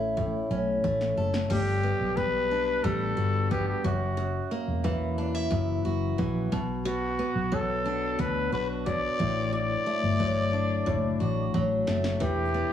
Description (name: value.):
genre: acoustic pop.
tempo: 90 BPM.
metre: 4/4.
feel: straight.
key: D major.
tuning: A4 = 442 Hz.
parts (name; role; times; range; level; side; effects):
picked steel-string acoustic guitar; accompaniment; 0.0-12.7 s; F#2 to A4; -29 LUFS; equal; none.
vintage muted fingered electric bass; bass; 0.0-12.6 s; E1 to D2; -30 LUFS; left 2 dB; none.
punchy analog drum machine; drums; 0.2-12.4 s; crash cymbal, kick drum, snare drum; -34 LUFS; left 1 dB; none.
growling trumpet; melody; 1.5-12.7 s; F#4 to D5; -29 LUFS; left 1 dB; none.
room: light reverb.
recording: heavily compressed radio sound, multiband compression, studio ambience.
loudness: -25 LUFS.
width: side -10 dB against mid.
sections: 0.0-1.5 A section; 1.5-12.7 B section.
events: drum fill 0.8-1.5, 10.9-12.2.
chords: 0.0 A; 1.5 Gmaj7; 3.8 F#7; 6.5 Bm; 9.2 D; 12.2 Em7.